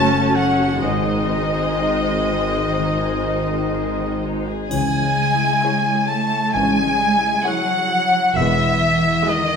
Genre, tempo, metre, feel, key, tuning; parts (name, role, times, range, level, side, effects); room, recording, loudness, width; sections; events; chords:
classical, slow romantic movement for symphony orchestra; 61-67 BPM; 4/4; rubato; C# minor; A4 = 438 Hz
clear chamber violin section; melody; 0.0-9.6 s; D#5 to A5; -23 LUFS; left 2 dB
clear oboe; second line; 0.0-9.6 s; D#5 to A5; -24 LUFS; right 1 dB
silver concert flute; second line; 0.0-9.6 s; D#5 to A5; -25 LUFS; equal
warm studio violin section; second line; 0.0-9.6 s; G#3 to C#5; -31 LUFS; left 5 dB
rich chamber viola section; accompaniment; 0.0-9.6 s; G#3 to F#4; -25 LUFS; right 1 dB
dark French horn section; sustained chords; 0.0-8.7 s; D#3 to C#4; -26 LUFS; left 3 dB
concert harp; arpeggios; 0.0-9.6 s; E2 to C#5; -25 LUFS; left 10 dB
clear chamber double bass section; bass; 0.0-9.1 s; E1 to C#2; -26 LUFS; right 5 dB
warm symphonic cello section; bass; 0.0-9.6 s; D#3 to A3; -26 LUFS; right 5 dB
triangle; percussion; 4.7-6.5 s; -38 LUFS; equal
wet recital hall reverb, RT60 1.5 s; -16 LUFS; side -6 dB against mid
0.0-9.6 A section
0.0 F#m; 0.8 G#; 4.7 C#m; 8.4 E